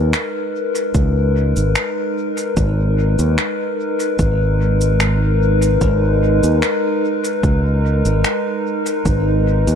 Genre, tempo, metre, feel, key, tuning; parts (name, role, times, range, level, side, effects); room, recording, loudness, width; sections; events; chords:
ambient dub; 74 BPM; 4/4; swing 53% on 16ths; G# minor; A4 = 440 Hz
warbly tape-like pad; sustained chords; 0.0-9.8 s; G#3 to B4; -19 LUFS; left 2 dB; chorus, built-in reverb
modern bright fingered electric bass; bass; 0.0-9.8 s; G#1 to D#2; -15 LUFS; equal
electronic finger snaps and shaker; drums; 0.1-9.8 s; -24 LUFS; equal; dub echo
electronic kick drum; drums; 0.9-9.2 s; -20 LUFS; equal; overdrive
little or no reverb; echo-heavy mix; -15 LUFS; side -7 dB against mid
0.0-9.8 A section
0.0 G#madd9